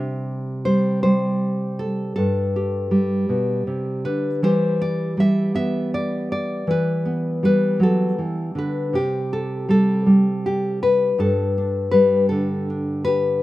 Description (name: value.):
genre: folk, solo fingerstyle acoustic guitar.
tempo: 53 BPM (dotted quarters).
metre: 6/8.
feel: straight.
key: G major.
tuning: A4 = 440 Hz.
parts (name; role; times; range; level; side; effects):
nylon-string guitar; solo; 0.0-13.4 s; G2 to E5; -18 LUFS; equal; none.
room: light reverb.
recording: recorded outdoors, with no room sound.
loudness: -18 LUFS.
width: side -16 dB against mid.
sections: 0.0-13.4 A section.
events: none.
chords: 0.0 C; 2.2 Gsus2; 4.4 Em7; 8.9 C5; 11.2 Gsus2.